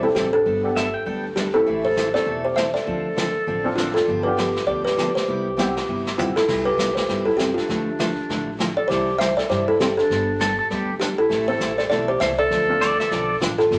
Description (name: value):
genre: country, western swing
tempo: 199 BPM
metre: 4/4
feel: swing 60% on 8ths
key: C major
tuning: A4 = 440 Hz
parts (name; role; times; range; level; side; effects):
- kalimba; melody; 0.0-13.8 s; F4 to E5; -25 LUFS; equal; none
- warm clarinet; second line; 0.0-13.8 s; C4 to C5; -28 LUFS; equal; none
- honky-tonk upright piano; accompaniment; 0.0-6.4, 11.5-12.8 s; A3 to A4; -30 LUFS; equal; none
- picked steel-string acoustic guitar; accompaniment; 0.0-13.8 s; C3 to A4; -31 LUFS; equal; none
- upright bass; bass; 0.0-13.8 s; E1 to G2; -36 LUFS; equal; none
- vintage brush drum kit; drums; 0.2-13.8 s; brushed snare drum, crash cymbal, hi-hat, kick drum, snare drum, toms; -31 LUFS; equal; none
- pedal steel guitar; second line; 0.8-1.2, 10.4-13.4 s; G4 to G5; -27 LUFS; equal; none
room: moderate studio reverb, RT60 0.8 s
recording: none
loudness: -22 LUFS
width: mono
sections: 0.0-6.5 A section; 6.5-13.8 A section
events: drum fill 5.9-6.5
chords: 0.5 Gadd9; 1.7 Am; 2.9 Dm7; 4.1 G7; 5.3 Cmaj7; 7.7 Dmadd9; 8.9 C6; 10.1 Gadd9; 11.3 Am; 12.5 Dm7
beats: 0.16 | 0.46 0.76 1.06 1.36 | 1.67 1.97 2.27 2.57 | 2.87 3.17 3.48 3.78 | 4.08 4.38 4.68 4.98 | 5.28 5.58 5.88 6.19 | 6.49 6.79 7.09 7.39 | 7.69 7.99 8.29 8.59 | 8.89 9.20 9.50 9.80 | 10.10 10.40 10.70 11.00 | 11.30 11.61 11.91 12.21 | 12.51 12.81 13.11 13.41 | 13.71